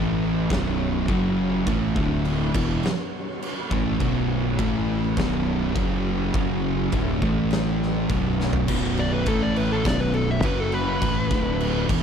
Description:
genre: stoner and doom metal.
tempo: 103 BPM.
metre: 4/4.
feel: straight.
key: B minor.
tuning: A4 = 439 Hz.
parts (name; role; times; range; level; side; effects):
string machine, full ensemble; sustained chords; 0.0-12.0 s; F#3 to E5; -38 LUFS; left 1 dB; none.
crunchy overdriven guitar; riff; 0.0-12.0 s; B1 to A3; -31 LUFS; left 1 dB; none.
thick fuzz guitar; riff; 0.0-12.0 s; B1 to A3; -28 LUFS; left 11 dB; distortion.
thick fuzz guitar; riff; 0.0-12.0 s; B1 to A3; -26 LUFS; right 9 dB; distortion.
fuzz fingered electric bass; bass; 0.0-12.0 s; B0 to A1; -28 LUFS; left 1 dB; overdrive.
oversized low-tuned drum kit; drums; 0.5-12.0 s; crash cymbal, kick drum, snare drum, toms; -27 LUFS; equal; none.
fuzz lead guitar; melody; 9.0-11.9 s; A4 to E5; -27 LUFS; left 1 dB; distortion, slapback echo.
room: little or no reverb.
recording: none.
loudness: -21 LUFS.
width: side -7 dB against mid.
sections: 0.0-8.7 A section; 8.7-12.0 B section.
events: drum fill 8.4; lead electric guitar solo 8.7-12.0.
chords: 0.0 A5; 0.5 B5; 1.1 F#5; 1.7 B5; 2.0 D5; 2.5 B5; 4.6 A5; 5.2 B5; 5.8 F#5; 6.9 Bm; 7.2 A5; 8.1 B5; 9.3 A5; 9.8 B5; 10.4 F#5; 11.0 B5; 11.3 D5.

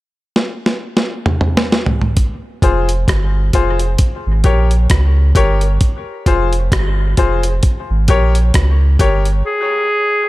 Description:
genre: dub reggae.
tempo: 66 BPM.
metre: 4/4.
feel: swing 58% on 16ths.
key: F minor.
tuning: A4 = 441 Hz.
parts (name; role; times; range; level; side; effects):
breakbeat sampler-style drum kit; drums; 0.4-9.4 s; hi-hat, kick drum, rim click, snare drum, toms; -15 LUFS; equal; none.
clear baby grand piano; stabs; 2.6-9.3 s; F4 to Db5; -20 LUFS; left 4 dB; dub echo.
warm sub bass; bass; 2.6-9.4 s; F1 to Db2; -14 LUFS; equal; none.
bright clarinet; melody; 9.5-10.3 s; Ab4; -14 LUFS; equal; none.
room: little or no reverb.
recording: none.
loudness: -12 LUFS.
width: side -18 dB against mid.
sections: 0.0-2.2 A section; 2.2-9.5 B section.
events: drum fill 0.3-2.2; break 9.5-10.3.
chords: 0.0 N.C.; 2.2 Fm; 4.0 Gdim; 5.8 Fm; 7.6 Gdim; 9.5 N.C..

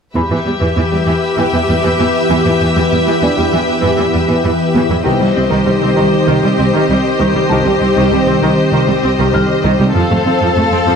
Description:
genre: cinematic, hybrid orchestral and electronic film score.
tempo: 98 BPM.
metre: 4/4.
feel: straight.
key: E phrygian.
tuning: A4 = 440 Hz.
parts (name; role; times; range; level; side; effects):
warm symphonic violin section; second line; 0.2-11.0 s; B4 to F5; -19 LUFS; left 5 dB; none.
rich studio viola section; accompaniment; 0.2-11.0 s; Eb3 to A4; -16 LUFS; equal; none.
soft additive organ-like pad; sustained chords; 0.7-11.0 s; Eb3 to E5; -16 LUFS; equal; ensemble chorus, built-in reverb.
rich symphonic cello section; bass; 0.2-10.9 s; C2 to F2; -16 LUFS; right 1 dB; none.
felt-muted upright piano; texture; 0.2-11.0 s; D4 to F6; -26 LUFS; left 2 dB; none.
room: moderate recital hall reverb, RT60 1.5 s.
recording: close, detailed microphones.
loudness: -11 LUFS.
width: side -6 dB against mid.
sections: 0.2-11.0 A section.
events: none.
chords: 0.2 Em; 5.0 Cm; 9.9 F.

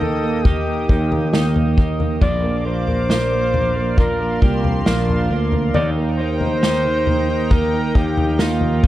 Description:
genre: pop ballad.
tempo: 68 BPM.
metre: 4/4.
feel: straight.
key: unclear.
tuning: A4 = 441 Hz.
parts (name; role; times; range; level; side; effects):
warm flugelhorn; melody; 0.0-8.9 s; F4 to D5; -23 LUFS; equal; none.
warm concert grand piano; accompaniment; 0.0-8.9 s; Eb3 to F4; -24 LUFS; right 1 dB; none.
chorused pulse-width pad; sustained chords; 0.0-8.9 s; Bb3 to Eb6; -28 LUFS; equal; none.
twelve-string electric guitar; arpeggios; 0.0-8.9 s; Bb2 to G4; -27 LUFS; right 4 dB; digital delay.
fretless electric bass; bass; 0.0-8.9 s; Bb1 to Eb2; -22 LUFS; equal; none.
unplugged drum kit; drums; 0.0-8.9 s; kick drum, snare drum, toms; -20 LUFS; equal; none.
room: studio ambience.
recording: dark, warm production.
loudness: -16 LUFS.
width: side -14 dB against mid.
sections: 0.0-8.9 A section.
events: none.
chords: 0.0 Eb; 2.2 Bb; 5.7 Eb.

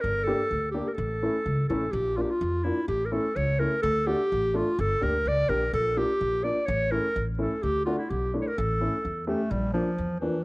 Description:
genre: klezmer.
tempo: 126 BPM.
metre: 2/4.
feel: straight.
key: unclear.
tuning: A4 = 440 Hz.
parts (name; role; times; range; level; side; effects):
warm clarinet; melody; 0.0-10.4 s; E3 to D5; -27 LUFS; equal; cassette tape.
upright bass; bass; 0.0-10.3 s; G1 to F2; -30 LUFS; equal; none.
dark upright piano; accompaniment; 0.3-10.3 s; F3 to A4; -31 LUFS; left 1 dB; none.
room: light reverb, studio reverb.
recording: home recording on cassette.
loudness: -24 LUFS.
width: side -25 dB against mid.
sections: 0.0-1.9 A section; 1.9-9.5 B section.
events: none.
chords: 0.0 Gm; 1.0 A; 1.9 Bb; 2.9 A; 3.8 D; 4.8 Gm; 5.7 Bb; 6.7 A; 7.6 D; 8.6 A; 9.5 Bb.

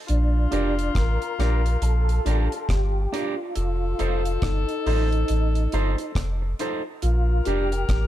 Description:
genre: roots reggae.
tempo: 69 BPM.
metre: 4/4.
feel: swing 60% on 16ths.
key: Bb major.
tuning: A4 = 441 Hz.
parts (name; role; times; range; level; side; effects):
mellow tonewheel organ; melody; 0.1-8.1 s; D4 to Bb4; -30 LUFS; right 1 dB; chorus vibrato, slow rotary speaker, dub echo.
breathy tenor saxophone; second line; 0.1-8.1 s; F4 to Bb4; -32 LUFS; left 9 dB; dub echo.
soft dub sub bass; bass; 0.1-8.1 s; F1 to Bb1; -22 LUFS; equal; none.
deep reggae drum kit; drums; 0.1-8.1 s; hi-hat, kick drum, rim click; -29 LUFS; equal; none.
electric guitar at the edge of break-up; accompaniment; 0.5-7.7 s; D4 to C5; -32 LUFS; right 6 dB; dub echo.
dark upright piano; stabs; 0.5-7.7 s; D4 to D5; -34 LUFS; left 5 dB; none.
room: little or no reverb.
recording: dark, warm production.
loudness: -21 LUFS.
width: side -13 dB against mid.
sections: 0.1-8.1 A section.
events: none.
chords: 0.1 Bb6; 3.6 F7; 7.0 Bb6.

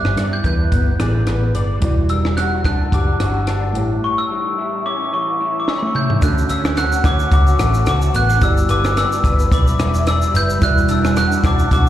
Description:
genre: indie pop, bedroom pop.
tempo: 109 BPM.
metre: 4/4.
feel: swing 55% on 16ths.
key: D major.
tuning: A4 = 440 Hz.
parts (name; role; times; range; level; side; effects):
glockenspiel with soft plastic mallets; melody; 0.0-11.9 s; B5 to G6; -21 LUFS; equal; lush chorus, slapback echo, tape echo.
electric guitar through a small old amp; accompaniment; 0.0-11.9 s; A2 to D5; -24 LUFS; left 3 dB; ensemble chorus, vibrato effect, slapback echo.
reed electric piano; accompaniment; 0.0-11.9 s; G3 to D5; -27 LUFS; right 4 dB; slapback echo.
vintage muted picked electric bass; bass; 0.0-11.9 s; E1 to G2; -18 LUFS; equal; none.
compact cocktail drum kit; drums; 0.1-11.9 s; hi-hat, kick drum, rim click, shaker, snare drum, toms; -19 LUFS; equal; none.
ethereal airy pad; sustained chords; 7.1-11.9 s; G3 to D6; -27 LUFS; right 1 dB; ensemble chorus, built-in reverb.
room: small room ambience.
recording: live gig heard through the venue's PA, recital hall reverb.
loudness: -14 LUFS.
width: side -12 dB against mid.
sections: 0.0-6.2 A section; 6.2-11.9 B section.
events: drum fill 5.7-6.2.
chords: 0.0 G6; 1.8 Em9; 3.7 A7; 6.2 Dmaj7; 8.4 Em9.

